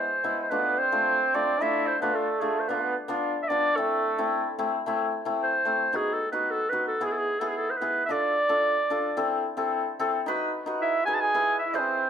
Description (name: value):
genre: klezmer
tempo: 111 BPM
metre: 2/4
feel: straight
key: A harmonic minor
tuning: A4 = 441 Hz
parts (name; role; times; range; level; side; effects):
- clear clarinet; melody; 0.0-12.1 s; G#4 to A5; -25 LUFS; equal; plate reverb
- hammered dulcimer; accompaniment; 0.0-12.0 s; G#3 to B4; -28 LUFS; left 2 dB; none
- trombone with straight mute; second line; 0.5-4.6, 10.8-12.1 s; A3 to G#4; -30 LUFS; right 6 dB; none
room: moderate studio reverb, RT60 0.6 s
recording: none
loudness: -24 LUFS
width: side -8 dB against mid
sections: 0.0-4.9 A section; 4.9-12.1 B section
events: clarinet solo 4.9-12.1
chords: 0.0 E; 0.5 Dm; 2.7 Bdim; 3.8 Am; 5.9 B; 7.0 E; 8.1 Dm; 9.2 Am; 10.3 B; 11.3 E